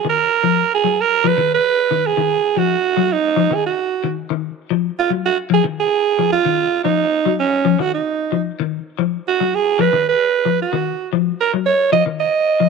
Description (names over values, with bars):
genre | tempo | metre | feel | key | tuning
afrobeat | 112 BPM | 4/4 | straight | unclear | A4 = 440 Hz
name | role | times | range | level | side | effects
raspy alto saxophone | melody | 0.0-12.7 s | C#4 to D#5 | -16 LUFS | right 8 dB | none
semi-hollow electric guitar | arpeggios | 0.0-12.7 s | D#3 to F#3 | -20 LUFS | left 15 dB | wide subtle chorus
room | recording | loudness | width
moderate spring reverb, RT60 2.1 s | 1960s-style stereo with parts hard left and right | -15 LUFS | side -4 dB against mid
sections
0.0-1.2 A section; 1.2-12.7 B section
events
none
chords
0.2 F#maj7; 1.2 G#m/D#; 2.3 D#madd9; 5.5 G#5; 6.6 D#madd9; 10.9 D#m9 (rootless); 11.9 D#sus2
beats
0.18 0.71 | 1.24 1.78 2.31 2.84 | 3.38 3.91 4.44 4.98 | 5.51 6.04 6.58 7.11 | 7.65 8.18 8.72 9.25 | 9.79 10.32 10.86 11.39 | 11.93 12.46